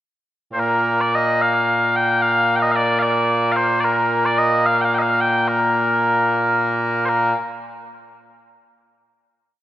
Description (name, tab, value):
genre	scottish traditional, Scottish pipe music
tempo	74 BPM (dotted quarters)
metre	6/8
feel	straight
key	Bb major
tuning	A4 = 440 Hz
part	mellow small bagpipes	solo	0.5-7.3 s	Bb2 to G5	-16 LUFS	equal	slapback echo
room	moderate lush hall reverb, RT60 2.7 s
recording	rough home demo mix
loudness	-16 LUFS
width	side -13 dB against mid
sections	0.0-0.6 pickup bar; 0.6-7.1 A section; 7.1-8.7 final note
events	none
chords	none